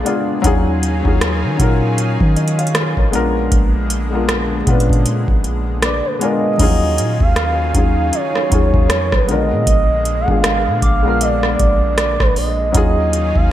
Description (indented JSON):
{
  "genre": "contemporary R&B",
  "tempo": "78 BPM",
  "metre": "4/4",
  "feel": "swing 58% on 16ths",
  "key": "Eb minor",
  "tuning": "A4 = 440 Hz",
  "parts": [
    { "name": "felt-muted upright piano", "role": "accompaniment", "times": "0.0-13.5 s", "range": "D3 to Bb5", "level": "-20 LUFS", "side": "left 3 dB", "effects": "wide subtle chorus" },
    { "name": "lush unison pad", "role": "sustained chords", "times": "0.0-13.5 s", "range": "Bb2 to Ab4", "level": "-26 LUFS", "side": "equal", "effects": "chorus, sidechain pumping" },
    { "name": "soft 808-style bass", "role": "bass", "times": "0.0-13.5 s", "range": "Ab1 to Eb3", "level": "-19 LUFS", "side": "equal", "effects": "none" },
    { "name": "booming analog drum machine", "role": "drums", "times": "0.1-13.5 s", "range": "crash cymbal, hi-hat, kick drum, rim click", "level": "-17 LUFS", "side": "equal", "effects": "overdrive, gated reverb" },
    { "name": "gliding portamento lead", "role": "melody", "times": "5.8-13.5 s", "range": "Cb5 to Gb5", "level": "-19 LUFS", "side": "right 3 dB", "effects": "chorus, digital delay" },
    { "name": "soft synth bell", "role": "texture", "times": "7.4-12.2 s", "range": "F5 to F6", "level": "-30 LUFS", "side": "equal", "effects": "none" }
  ],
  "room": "light reverb",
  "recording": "bright 1980s-style digital production",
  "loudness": "-13 LUFS",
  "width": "side -12 dB against mid",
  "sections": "0.0-6.6 A section; 6.6-13.5 B section",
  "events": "felt piano fill 0.0-0.4, 5.4-6.6",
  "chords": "0.4 Ebm11; 3.1 Bb7b9; 6.6 Ebm11; 9.3 Bb7b9; 12.8 Ebm11"
}